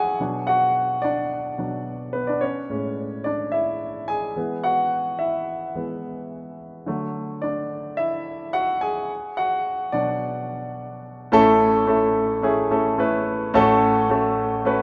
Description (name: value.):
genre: pop.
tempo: 108 BPM.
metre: 4/4.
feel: straight.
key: unclear.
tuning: A4 = 441 Hz.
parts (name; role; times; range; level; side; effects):
warm grand piano; solo; 0.0-14.8 s; A1 to G#5; -23 LUFS; equal; none.
room: wet plate reverb, RT60 3.3 s.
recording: rough home demo mix.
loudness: -23 LUFS.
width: mono.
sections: 0.0-11.3 A section; 11.3-14.8 B section.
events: grand piano solo 0.0-11.3.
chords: 0.2 Bm; 2.4 Amaj7; 4.4 E; 6.9 Dadd9; 9.1 Bm; 11.3 A; 13.5 F#m/A.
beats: | 0.19 0.75 1.31 1.86 | 2.42 2.98 3.53 4.09 | 4.64 5.20 5.76 6.32 | 6.87 7.43 7.99 8.54 | 9.10 9.65 10.21 10.77 | 11.32 11.88 12.44 12.99 | 13.55 14.10 14.66.